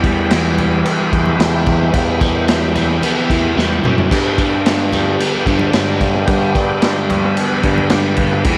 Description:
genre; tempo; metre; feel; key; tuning
psychedelic rock; 110 BPM; 4/4; straight; unclear; A4 = 440 Hz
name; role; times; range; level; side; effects
overdriven tonewheel organ; sustained chords; 0.0-8.6 s; G4 to G5; -26 LUFS; equal; slow rotary speaker, chorus vibrato
crunchy overdriven guitar; riff; 0.0-8.6 s; G2 to B3; -20 LUFS; equal; phaser, tape echo
fuzz fingered electric bass; bass; 0.0-8.6 s; E2 to G2; -20 LUFS; equal; overdrive
vintage drum kit; drums; 0.0-8.6 s; crash cymbal, kick drum, snare drum, toms; -20 LUFS; equal; tape echo
congas; percussion; 0.6-8.3 s; none; -30 LUFS; equal; none
room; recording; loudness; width
light reverb, small room reverb; echo-heavy mix; -15 LUFS; mono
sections
0.0-8.6 A section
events
drum fill 3.6-4.1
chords
0.0 Em; 4.1 G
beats
0.31 0.86 1.40 | 1.94 2.48 3.03 3.57 | 4.11 4.65 5.20 5.74 | 6.28 6.83 7.37 7.91 | 8.46

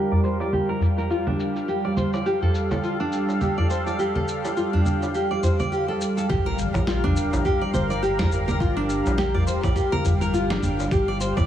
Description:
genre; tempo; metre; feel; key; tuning
organic downtempo; 104 BPM; 4/4; swing 57% on 16ths; G minor; A4 = 440 Hz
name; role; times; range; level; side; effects
warm analog pad; sustained chords; 0.0-11.5 s; G3 to F5; -26 LUFS; equal; chorus, sidechain pumping
nylon-string guitar; arpeggios; 0.0-11.5 s; D4 to D5; -26 LUFS; equal; digital delay
darbuka; percussion; 0.1-11.5 s; none; -26 LUFS; equal; none
electronic shaker, congas and snare drum; drums; 0.2-11.5 s; none; -30 LUFS; right 1 dB; studio reverb
round analog bass; bass; 6.3-11.5 s; D1 to Bb1; -27 LUFS; equal; none
electronic kick drum; drums; 6.3-11.5 s; none; -25 LUFS; equal; studio reverb
impact; sound effects; 6.3-8.6 s; none; -32 LUFS; equal; none
room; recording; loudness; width
light reverb, digital ambience; heavily compressed radio sound, low-pass filter, small room ambience; -21 LUFS; side -10 dB against mid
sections
0.0-6.3 A section; 6.3-11.5 B section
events
filter sweep 0.0-6.3; impact 6.3-8.6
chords
0.0 Gm7; 1.7 Fadd9/G; 6.3 Gm7; 10.9 Fsus2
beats
0.53 1.11 | 1.68 2.26 2.84 3.41 | 3.99 4.57 5.14 5.72 | 6.30 6.88 7.45 8.03 | 8.61 9.18 9.76 10.34 | 10.91

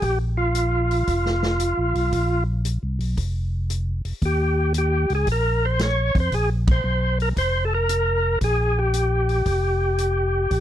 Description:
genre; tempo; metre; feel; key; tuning
soul jazz organ trio; 114 BPM; 4/4; swing 68% on 8ths; unclear; A4 = 438 Hz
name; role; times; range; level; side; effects
percussive tonewheel organ; melody; 0.0-10.6 s; F4 to Db5; -22 LUFS; equal; overdrive, fast rotary speaker
tonewheel organ; bass; 0.0-10.6 s; F1 to F2; -23 LUFS; equal; overdrive, chorus vibrato, slow rotary speaker
vintage drum kit; drums; 0.0-10.6 s; hi-hat, kick drum, ride cymbal, snare drum; -26 LUFS; equal; none
room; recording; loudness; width
small room reverb; dry, close 1970s-style studio recording; -20 LUFS; side -11 dB against mid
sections
0.0-10.6 A section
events
band accent 6.6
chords
0.0 Bb5; 4.2 Eb9; 6.3 Bbsus2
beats
| 0.03 0.55 1.08 1.60 | 2.13 2.65 3.18 3.70 | 4.22 4.75 5.27 5.80 | 6.32 6.85 7.37 7.89 | 8.42 8.95 9.47 9.99 | 10.52

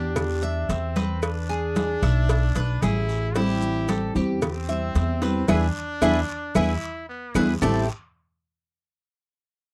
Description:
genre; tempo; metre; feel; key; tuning
latin, Cuban son and guajira; 113 BPM; 4/4; straight; A minor; A4 = 440 Hz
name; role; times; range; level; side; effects
bright trumpet; second line; 0.0-7.9 s; B3 to G4; -35 LUFS; equal; none
Cuban tres; arpeggios; 0.0-7.9 s; A3 to E5; -30 LUFS; equal; none
upright bass; bass; 0.0-7.9 s; A1 to E2; -28 LUFS; equal; none
claves; percussion; 0.2-7.7 s; none; -41 LUFS; equal; none
congas; percussion; 0.2-7.7 s; none; -30 LUFS; equal; none
cowbell and bongos; percussion; 0.2-7.7 s; none; -33 LUFS; equal; none
guiro; percussion; 0.2-7.7 s; none; -46 LUFS; equal; none
maracas; percussion; 0.2-7.7 s; none; -45 LUFS; equal; none
nylon-string guitar; accompaniment; 3.4-7.8 s; A2 to E4; -28 LUFS; equal; none
room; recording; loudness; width
light reverb; dry, close 1970s-style studio recording; -24 LUFS; mono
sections
0.0-7.6 A section; 7.6-9.7 B section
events
band accent 5.5-7.6; drum fill 6.6-7.6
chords
0.0 Am7 (rootless); 1.2 E7; 3.4 Am7; 5.5 E7; 7.6 A7(no3)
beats
0.16 0.69 | 1.23 1.76 2.29 2.82 | 3.36 3.89 4.42 4.95 | 5.49 6.02 6.55 7.08 | 7.62

